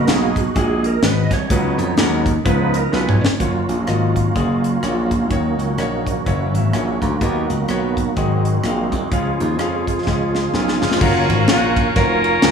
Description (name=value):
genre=uptempo gospel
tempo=126 BPM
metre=4/4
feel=swing 60% on 8ths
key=F# major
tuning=A4 = 440 Hz
part: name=bright concert grand piano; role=accompaniment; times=0.0-12.5 s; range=G#2 to A#5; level=-24 LUFS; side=left 2 dB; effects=none
part: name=bright tonewheel organ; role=sustained chords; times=0.0-12.5 s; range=C#3 to C#6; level=-22 LUFS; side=right 4 dB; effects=chorus vibrato, stopped rotary speaker
part: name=slap bass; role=bass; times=0.0-12.5 s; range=E#1 to E#2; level=-20 LUFS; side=equal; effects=none
part: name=tight funk drum kit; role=drums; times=0.1-12.5 s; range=crash cymbal, hi-hat, kick drum, ride cymbal, rim click, snare drum, toms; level=-21 LUFS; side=equal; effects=none
part: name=bright saxophone section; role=melody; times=10.5-12.5 s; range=G#3 to A#4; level=-19 LUFS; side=left 1 dB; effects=none
room=wet large studio reverb, RT60 1.1 s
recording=band playing live in one room, studio ambience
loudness=-16 LUFS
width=side -6 dB against mid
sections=0.0-3.4 A section; 3.4-11.0 B section; 11.0-12.5 C section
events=tonewheel organ solo 0.0-3.4; drum fill 2.9-3.4, 10.1-11.0; grand piano fill 6.3-7.2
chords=0.0 G#m7; 1.5 C#7sus4; 2.5 C#7; 3.4 F#maj7; 5.3 D#m7; 6.3 F#7; 7.2 Bmaj7; 8.2 G#7; 9.1 C#; 11.0 F#maj7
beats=0.08 0.56 1.03 | 1.50 1.98 2.45 2.93 | 3.40 3.88 4.36 4.83 | 5.31 5.79 6.26 6.74 | 7.21 7.69 8.16 8.64 | 9.12 9.59 10.06 10.54 | 11.01 11.48 11.96 12.43